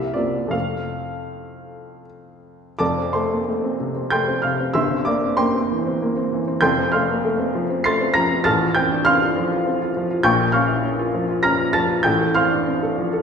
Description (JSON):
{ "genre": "classical, romantic character piece for solo piano", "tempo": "76-104 BPM", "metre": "3/4", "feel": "rubato", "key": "F major", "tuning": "A4 = 439 Hz", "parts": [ { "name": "warm baby grand piano", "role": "solo", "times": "0.0-13.2 s", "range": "F1 to C7", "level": "-18 LUFS", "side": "equal", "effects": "none" } ], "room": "wet scoring stage reverb, RT60 1.6 s", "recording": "recorded in a church or concert hall, nothing above 10.3 kHz", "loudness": "-18 LUFS", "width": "side -6 dB against mid", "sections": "0.0-2.8 A section; 2.8-13.2 B section", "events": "none", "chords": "0.0 C7; 0.5 F; 4.8 C7/G; 6.6 F; 8.5 F/A; 10.3 Bbm; 12.0 F/A", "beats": "| 0.54 1.31 2.06 | 2.80 3.47 4.12 | 4.75 5.39 6.01 | 6.63 7.23 7.85 | 8.46 9.06 9.67 | 10.26 10.84 11.44 | 12.05 12.67" }